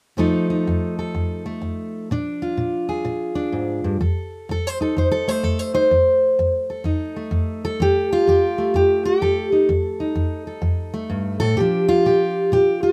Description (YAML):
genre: acoustic country blues, solo or duo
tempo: 127 BPM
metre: 4/4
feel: swing 65% on 8ths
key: F mixolydian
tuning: A4 = 441 Hz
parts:
  - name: fingerpicked steel-string acoustic guitar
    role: solo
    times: 0.2-12.9 s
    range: F2 to C5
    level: -20 LUFS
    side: equal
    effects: none
room: little or no reverb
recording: none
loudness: -21 LUFS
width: mono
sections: 0.2-4.0 A section; 4.0-12.9 B section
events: none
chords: 0.2 F7; 2.1 Bb7; 4.0 F7; 11.6 Bb